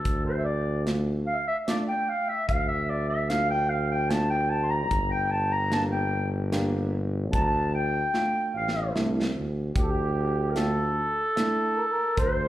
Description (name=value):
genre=klezmer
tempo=74 BPM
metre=3/4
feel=straight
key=D minor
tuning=A4 = 441 Hz
part: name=mellow clarinet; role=melody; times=0.0-12.5 s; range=G4 to Bb5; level=-28 LUFS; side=equal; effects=slapback echo
part: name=clear tuba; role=bass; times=0.0-12.5 s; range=G1 to D2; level=-28 LUFS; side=equal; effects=none
part: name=modern studio drum kit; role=drums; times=0.1-12.4 s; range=hi-hat, kick drum, snare drum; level=-30 LUFS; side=equal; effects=none
part: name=mellow accordion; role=second line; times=0.3-12.5 s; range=G4 to C6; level=-33 LUFS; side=right 1 dB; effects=slapback echo
part: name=warm upright piano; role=accompaniment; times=0.9-11.8 s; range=A3 to G4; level=-31 LUFS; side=right 1 dB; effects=slapback echo
room=light reverb, small room ambience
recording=live gig heard through the venue's PA, club reverb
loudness=-24 LUFS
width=side -14 dB against mid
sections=0.0-9.8 A section; 9.8-12.5 B section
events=clarinet solo 0.0-9.8; drum fill 8.1-9.8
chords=0.1 Dm; 4.9 Gm; 7.3 Dm